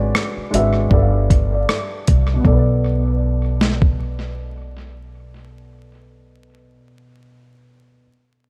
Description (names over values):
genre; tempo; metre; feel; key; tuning
lo-fi hip hop; 78 BPM; 4/4; swing 56% on 16ths; B minor; A4 = 440 Hz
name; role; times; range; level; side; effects
felt-muted upright piano; melody; 0.0-4.7 s; D5 to E5; -29 LUFS; equal; low-pass filter, tape echo
dark upright piano; accompaniment; 0.0-8.0 s; B2 to F5; -26 LUFS; equal; cassette tape, low-pass filter, tape echo
upright bass; bass; 0.0-6.8 s; G1 to C2; -22 LUFS; equal; none
boom bap sampler-style drum kit; drums; 0.1-4.0 s; hi-hat, kick drum, rim click, snare drum; -19 LUFS; equal; none
room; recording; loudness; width
studio ambience; echo-heavy mix, vinyl crackle; -17 LUFS; mono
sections
0.0-2.4 A section; 2.4-5.5 B section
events
filter sweep 0.0-2.4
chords
0.0 G#m7b5; 0.9 G9; 2.4 Bm7